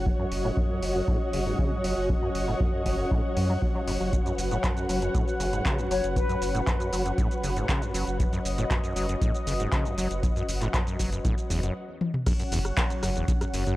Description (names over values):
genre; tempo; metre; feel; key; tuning
acid house; 118 BPM; 4/4; straight; unclear; A4 = 441 Hz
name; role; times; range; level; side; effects
lush unison pad; sustained chords; 0.0-13.8 s; F#3 to F#5; -33 LUFS; left 1 dB; chorus, sidechain pumping
round analog bass; bass; 0.0-13.7 s; F#1 to F#2; -31 LUFS; equal; sidechain pumping
dark symphonic string section; texture; 0.0-11.8 s; F#4 to F#5; -34 LUFS; equal; sidechain pumping
acid bass, saw; riff; 0.1-13.8 s; E2 to F#3; -32 LUFS; equal; tube saturation, sidechain pumping, analog delay
electronic kick drum; drums; 0.1-13.4 s; none; -27 LUFS; equal; none
booming analog drum machine; drums; 0.3-13.8 s; crash cymbal, handclaps, hi-hat, rim click, shaker, toms; -33 LUFS; equal; none
silver concert flute; melody; 5.9-6.5 s; B4 to C#5; -32 LUFS; left 5 dB; analog delay
room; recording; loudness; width
light reverb; dry, gritty hardware recording; -24 LUFS; side -16 dB against mid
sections
0.0-12.3 A section; 12.3-13.8 B section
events
filter sweep on acid bass 0.0-12.3; stop 11.8-12.3; drum fill 12.0; drop 12.3-13.8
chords
0.0 F#5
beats
| 0.06 0.57 1.08 1.59 | 2.10 2.60 3.11 3.62 | 4.13 4.64 5.15 5.66 | 6.16 6.67 7.18 7.69 | 8.20 8.71 9.21 9.72 | 10.23 10.74 11.25 11.76 | 12.27 12.77 13.28